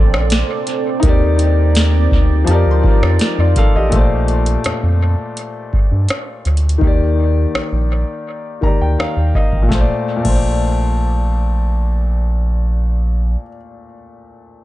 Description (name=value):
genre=contemporary R&B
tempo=83 BPM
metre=4/4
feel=straight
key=Bb major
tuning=A4 = 440 Hz
part: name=warm concert grand piano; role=accompaniment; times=0.0-14.6 s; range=Bb2 to Bb5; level=-20 LUFS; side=left 3 dB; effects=dub echo
part: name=deep dark ambient pad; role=sustained chords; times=0.0-3.9 s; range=F3 to D5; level=-23 LUFS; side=right 4 dB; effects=chorus, built-in reverb
part: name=round analog bass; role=bass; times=0.0-13.4 s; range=Ab1 to G2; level=-15 LUFS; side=equal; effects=none
part: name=booming analog drum machine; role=drums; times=0.1-10.5 s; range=crash cymbal, hi-hat, kick drum, rim click, snare drum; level=-17 LUFS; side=equal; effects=dub echo
part: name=glassy wavetable pluck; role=texture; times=2.5-4.5 s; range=A5 to C6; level=-34 LUFS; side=right 2 dB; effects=none
room=little or no reverb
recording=echo-heavy mix, nothing above 10.3 kHz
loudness=-13 LUFS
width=side -16 dB against mid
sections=0.0-3.9 A section; 3.9-9.7 B section; 9.7-12.6 C section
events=grand piano fill 8.3-9.7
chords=0.0 Bbmaj9; 1.0 Ebmaj7; 2.5 F13sus4; 3.9 Bbmaj9; 6.8 Ebmaj7; 9.7 Bbmaj9